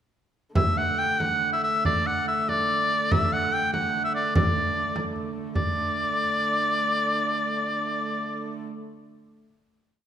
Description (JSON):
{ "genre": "medieval dance", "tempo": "93-108 BPM (dotted quarters)", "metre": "6/8", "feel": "straight", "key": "D major", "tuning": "A4 = 441 Hz", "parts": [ { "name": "bright shawm", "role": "melody", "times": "0.6-8.6 s", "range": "D5 to G5", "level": "-24 LUFS", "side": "left 1 dB", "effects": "none" }, { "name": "dark hurdy-gurdy", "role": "drone", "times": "0.6-8.7 s", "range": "D3 to A3", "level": "-32 LUFS", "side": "right 4 dB", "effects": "none" }, { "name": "frame drum", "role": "percussion", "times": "0.6-5.7 s", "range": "none", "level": "-27 LUFS", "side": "right 1 dB", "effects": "none" } ], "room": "wet scoring stage reverb, RT60 1.6 s", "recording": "minimal, uncompressed stereo recording", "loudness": "-23 LUFS", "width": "side -9 dB against mid", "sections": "0.6-5.6 A section; 5.6-7.9 final chord", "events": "speeding up 0.6-7.9", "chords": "none" }